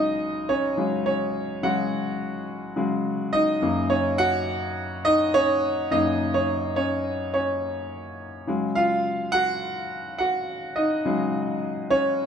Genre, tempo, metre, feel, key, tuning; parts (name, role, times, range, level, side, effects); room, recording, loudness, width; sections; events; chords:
pop; 105 BPM; 4/4; straight; F# major; A4 = 439 Hz
clear concert grand piano; solo; 0.0-12.3 s; F#2 to F#5; -22 LUFS; equal
moderate large studio reverb, RT60 1.1 s; band playing live in one room; -22 LUFS; side -7 dB against mid
0.0-12.3 A section
grand piano solo 0.0-12.3
0.0 C#sus4; 3.6 F#; 8.5 C#sus4